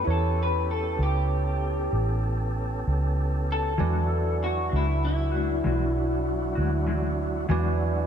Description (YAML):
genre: blues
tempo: 65 BPM (dotted quarters)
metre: 12/8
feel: straight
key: unclear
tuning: A4 = 440 Hz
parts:
  - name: electric guitar through a small old amp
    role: melody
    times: 0.0-6.8 s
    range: E4 to B4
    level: -30 LUFS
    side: left 2 dB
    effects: analog chorus
  - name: bright tine electric piano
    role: accompaniment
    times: 0.0-8.1 s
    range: E4 to G#5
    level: -35 LUFS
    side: right 8 dB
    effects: wide subtle chorus
  - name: tonewheel organ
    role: sustained chords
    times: 0.0-8.1 s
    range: F#3 to A4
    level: -32 LUFS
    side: right 2 dB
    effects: slow rotary speaker, overdrive
  - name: vintage muted fingered electric bass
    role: bass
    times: 0.0-8.1 s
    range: A1 to E2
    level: -26 LUFS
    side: equal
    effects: none
  - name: mellow electric guitar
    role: accompaniment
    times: 3.8-7.7 s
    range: E3 to F#4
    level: -33 LUFS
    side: left 4 dB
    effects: tremolo
room: light reverb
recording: none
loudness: -23 LUFS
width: side -8 dB against mid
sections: 0.0-8.1 A section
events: clean electric guitar solo 0.0-8.1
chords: 0.0 A9; 3.8 E9